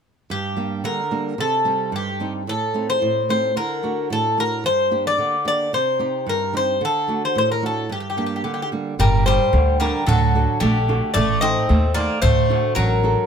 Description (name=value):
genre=greek folk, Greek bouzouki band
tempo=111 BPM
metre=2/4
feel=straight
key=G harmonic minor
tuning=A4 = 440 Hz
part: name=Greek bouzouki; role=melody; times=0.3-13.3 s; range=G4 to Eb5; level=-21 LUFS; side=left 2 dB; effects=none
part: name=flamenco guitar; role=accompaniment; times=0.3-13.3 s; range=G2 to C5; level=-25 LUFS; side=right 4 dB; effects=none
part: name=Greek bouzouki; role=second line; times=9.0-13.3 s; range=D3 to C4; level=-25 LUFS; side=left 2 dB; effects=none
part: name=upright bass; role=bass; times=9.0-13.1 s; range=G1 to Eb2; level=-20 LUFS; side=equal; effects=none
part: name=darbuka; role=percussion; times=9.0-13.3 s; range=none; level=-23 LUFS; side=right 4 dB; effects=none
room=little or no reverb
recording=close, detailed microphones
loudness=-18 LUFS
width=side -7 dB against mid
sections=0.3-9.0 A section; 9.0-13.3 B section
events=none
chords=0.3 Gm; 1.4 Cm; 2.5 Adim; 3.6 D; 4.6 Gm; 5.7 Cm; 6.8 D; 7.9 Gm; 10.1 D; 11.1 Adim; 12.2 D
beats=| 0.30 0.84 | 1.39 1.93 | 2.47 3.02 | 3.56 4.11 | 4.65 5.19 | 5.74 6.28 | 6.82 7.36 | 7.91 8.45 | 8.99 9.53 | 10.07 10.61 | 11.15 11.69 | 12.23 12.77